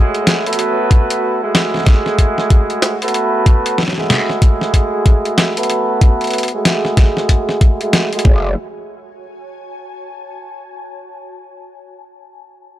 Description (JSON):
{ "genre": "glitch hop", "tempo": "94 BPM", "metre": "4/4", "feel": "swing 61% on 16ths", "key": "F# minor", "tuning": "A4 = 441 Hz", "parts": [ { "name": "mellow horn section", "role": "stabs", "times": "0.0-8.5 s", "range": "G#3 to B4", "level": "-17 LUFS", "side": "right 1 dB", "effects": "sidechain pumping, low-pass filter, analog delay" }, { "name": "ethereal airy pad", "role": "texture", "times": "0.0-11.1 s", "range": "F#4 to A5", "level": "-31 LUFS", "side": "right 1 dB", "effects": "ensemble chorus, built-in reverb, phaser, sidechain pumping" }, { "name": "boom bap sampler-style drum kit", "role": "drums", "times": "0.1-8.2 s", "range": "hi-hat, snare drum", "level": "-17 LUFS", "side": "left 1 dB", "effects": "none" }, { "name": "electronic kick drum", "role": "drums", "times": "0.9-8.4 s", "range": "none", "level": "-10 LUFS", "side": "equal", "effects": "none" }, { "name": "growl bass", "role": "bass", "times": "8.3-8.5 s", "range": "F#1", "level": "-17 LUFS", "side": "equal", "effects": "chorus, overdrive" } ], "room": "little or no reverb", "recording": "dry, gritty hardware recording, transformer saturation", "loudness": "-12 LUFS", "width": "side -14 dB against mid", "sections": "0.0-8.6 A section; 8.6-11.1 B section", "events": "filter sweep on horn section 0.0-8.6", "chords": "0.0 F#m9; 8.6 F#madd9", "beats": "0.27 | 0.91 1.55 2.19 2.82 | 3.46 4.10 4.74 5.38 | 6.01 6.65 7.29 7.93 | 8.57 9.21 9.85 10.48" }